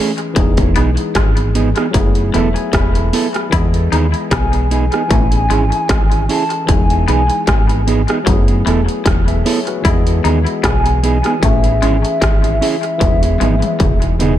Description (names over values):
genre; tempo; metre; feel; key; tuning
lovers rock reggae; 76 BPM; 4/4; swing 55% on 16ths; E major; A4 = 440 Hz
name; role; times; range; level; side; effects
barky tine electric piano; accompaniment; 0.0-14.4 s; E3 to B5; -22 LUFS; left 3 dB; overdrive, dub echo
mellow electric guitar; stabs; 0.0-14.3 s; A3 to A4; -20 LUFS; right 5 dB; dub echo
techno drum kit; drums; 0.2-14.4 s; hi-hat, kick drum, rim click, toms; -16 LUFS; equal; distortion, dub echo
twangy electric guitar; riff; 0.4-14.0 s; E3 to E4; -25 LUFS; left 6 dB; dub echo
deep dub fingered electric bass; bass; 0.4-14.4 s; E1 to E2; -16 LUFS; equal; none
hollow clarinet-like synth lead; melody; 4.3-14.4 s; E5 to A5; -20 LUFS; equal; chorus, dub echo
room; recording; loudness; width
little or no reverb; none; -12 LUFS; side -12 dB against mid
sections
0.0-14.4 A section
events
tine electric piano fill 1.9-3.5; drum fill 13.0-14.4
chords
0.4 Emaj7; 1.9 F#m11; 3.5 Emaj7; 5.1 Amaj7; 6.7 Emaj7; 8.3 F#m11; 9.8 Emaj7; 11.4 Amaj7; 13.0 Emaj7